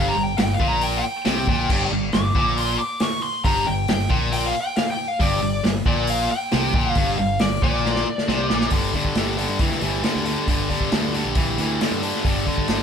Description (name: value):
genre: blues rock power trio and southern rock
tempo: 137 BPM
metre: 4/4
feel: straight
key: G minor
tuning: A4 = 440 Hz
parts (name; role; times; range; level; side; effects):
- lead guitar through a small cranked amp; melody; 0.0-8.7 s; D5 to D6; -24 LUFS; left 2 dB; overdrive
- tight distorted guitar; riff; 0.0-12.8 s; G2 to E3; -23 LUFS; equal; distortion
- growling fingered electric bass; bass; 0.0-12.8 s; G1 to G2; -27 LUFS; equal; overdrive
- vintage drum kit; drums; 0.4-12.8 s; crash cymbal, hi-hat, kick drum, snare drum; -23 LUFS; equal; none
room: light reverb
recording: band playing live in one room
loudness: -19 LUFS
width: side -7 dB against mid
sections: 0.0-8.7 A section; 8.7-12.8 B section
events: lead electric guitar solo 0.0-8.7; drum fill 7.8-8.7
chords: 0.0 Gm; 8.7 G5